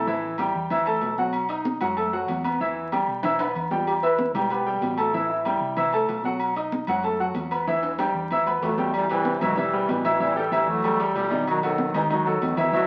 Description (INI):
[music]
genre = latin, salsa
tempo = 190 BPM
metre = 4/4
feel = straight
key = E harmonic minor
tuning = A4 = 439 Hz
[part]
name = dark trombone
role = melody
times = 0.0-0.5, 3.9-6.2 s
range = E4 to B4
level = -30 LUFS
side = equal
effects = none
[part]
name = clear grand piano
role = accompaniment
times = 0.0-12.9 s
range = D#3 to E6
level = -27 LUFS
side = equal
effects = none
[part]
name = hollow-body short-scale fingered electric bass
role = bass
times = 0.0-12.9 s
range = A1 to F#2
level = -39 LUFS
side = equal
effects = none
[part]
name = congas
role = percussion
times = 0.1-12.9 s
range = none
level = -35 LUFS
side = equal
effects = none
[part]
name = timbales and agogo bells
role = percussion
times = 0.4-12.7 s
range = none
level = -31 LUFS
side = equal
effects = none
[part]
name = clear trombone section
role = melody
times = 8.6-12.9 s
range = B2 to A3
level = -28 LUFS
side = equal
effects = none
[sound]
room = wet studio reverb, RT60 0.8 s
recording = very old 78 rpm record, vinyl crackle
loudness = -24 LUFS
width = mono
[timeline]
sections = 0.0-8.9 A section; 8.9-12.9 B section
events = drum fill 3.2-3.9, 7.7-8.9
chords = 0.1 A5; 1.3 B7; 2.6 Em; 5.1 Am7; 6.4 B7; 7.7 Emadd9; 8.9 Em; 10.2 A5; 11.5 B7